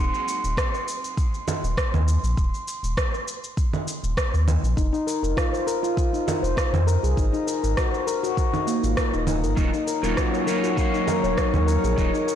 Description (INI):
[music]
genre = organic downtempo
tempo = 100 BPM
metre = 4/4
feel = swing 54% on 16ths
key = Eb dorian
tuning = A4 = 439 Hz
[part]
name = warm sub bass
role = bass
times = 0.0-12.1 s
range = Eb1 to F2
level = -23 LUFS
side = equal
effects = sidechain pumping
[part]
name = quartz singing bowl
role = texture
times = 0.0-12.4 s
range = C6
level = -34 LUFS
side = right 2 dB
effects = shimmer reverb
[part]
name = electronic shaker, rim click and congas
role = drums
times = 0.1-12.4 s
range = none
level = -29 LUFS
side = right 2 dB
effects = soft clipping on snare
[part]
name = electronic kick drum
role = drums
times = 0.6-12.1 s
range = none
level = -25 LUFS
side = equal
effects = none
[part]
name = handpan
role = arpeggios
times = 4.8-12.4 s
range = Bb3 to Db5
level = -25 LUFS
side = left 3 dB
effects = vintage 12-bit sampler grit, digital delay, shimmer reverb
[part]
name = electric guitar at the edge of break-up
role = accompaniment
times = 9.6-12.1 s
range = Gb3 to F5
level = -29 LUFS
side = right 4 dB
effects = sidechain pumping, digital delay, shimmer reverb
[part]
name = airy breathy pad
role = sustained chords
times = 9.8-12.4 s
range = Eb4 to Db5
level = -31 LUFS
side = left 3 dB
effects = chorus, sidechain pumping, shimmer reverb
[sound]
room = moderate recital hall reverb, RT60 1.5 s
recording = blown-out, overdriven recording, overdrive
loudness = -21 LUFS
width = side -10 dB against mid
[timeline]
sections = 0.0-12.4 A section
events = none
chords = 0.0 Eb5; 4.8 F7(no3); 7.2 Ab7; 9.6 Ebm7